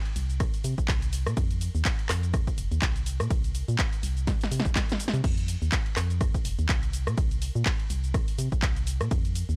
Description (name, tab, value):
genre	piano house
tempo	124 BPM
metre	4/4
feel	swing 57% on 16ths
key	unclear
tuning	A4 = 441 Hz
part	house drum kit	drums	0.1-9.6 s	cabasa, crash cymbal, handclaps, hi-hat, ride cymbal, rim click, snare drum	-35 LUFS	equal	none
part	organ-like FM bass	bass	0.2-9.6 s	F1 to C3	-30 LUFS	equal	sidechain pumping
part	electronic kick drum	drums	0.4-9.2 s	none	-30 LUFS	equal	none
room	digital ambience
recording	dry, gritty hardware recording, cassette tape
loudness	-27 LUFS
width	mono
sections	0.0-9.6 A section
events	drum fill 4.3-5.2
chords	none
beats	0.40 0.89 | 1.37 1.85 2.34 2.82 | 3.31 3.79 4.27 4.76 | 5.24 5.72 6.21 6.69 | 7.18 7.66 8.14 8.63 | 9.11